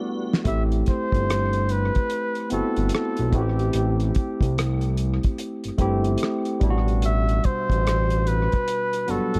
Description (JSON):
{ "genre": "R&B, neo-soul", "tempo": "73 BPM", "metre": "4/4", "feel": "swing 63% on 16ths", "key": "A dorian", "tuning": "A4 = 435 Hz", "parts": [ { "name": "barky tine electric piano", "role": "accompaniment", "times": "0.0-9.4 s", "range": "B2 to G4", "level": "-29 LUFS", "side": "equal", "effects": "overdrive" }, { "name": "cloth-damped thuddy drum kit", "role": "drums", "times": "0.3-9.4 s", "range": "hi-hat, kick drum, rim click, snare drum", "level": "-27 LUFS", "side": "equal", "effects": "none" }, { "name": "warm flugelhorn", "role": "melody", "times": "0.5-9.4 s", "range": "G4 to E5", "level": "-30 LUFS", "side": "equal", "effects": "tape echo" }, { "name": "smooth gliding synth bass", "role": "bass", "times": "0.5-9.4 s", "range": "G1 to C2", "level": "-25 LUFS", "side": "equal", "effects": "none" } ], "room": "light reverb, small room ambience", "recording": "echo-heavy mix", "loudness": "-23 LUFS", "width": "mono", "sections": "0.5-9.4 A section", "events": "drum fill 0.0-0.5", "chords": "0.5 Am9; 3.3 Am7; 6.6 Gmaj9" }